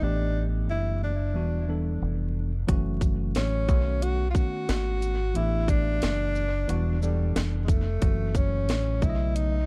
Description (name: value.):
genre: hip hop, jazz-hop.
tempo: 90 BPM.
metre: 4/4.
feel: swing 60% on 16ths.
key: E dorian.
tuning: A4 = 440 Hz.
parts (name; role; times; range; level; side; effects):
breathy tenor saxophone; melody; 0.0-9.7 s; G3 to F#4; -34 LUFS; equal; dub echo.
mellow tine electric piano; accompaniment; 0.0-9.6 s; C#3 to D#5; -35 LUFS; equal; none.
deep dub fingered electric bass; bass; 0.0-9.7 s; E1 to B1; -29 LUFS; equal; none.
garage drum kit; drums; 2.7-9.5 s; hi-hat, kick drum, shaker, snare drum; -28 LUFS; equal; none.
room: little or no reverb.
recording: echo-heavy mix, vinyl crackle.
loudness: -26 LUFS.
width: mono.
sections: 0.0-9.7 A section.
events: none.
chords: 0.0 A9sus4; 1.4 Em9; 2.7 F#m7; 3.7 B9; 5.4 A9sus4; 6.7 Em9; 8.0 F#m7; 9.0 B9.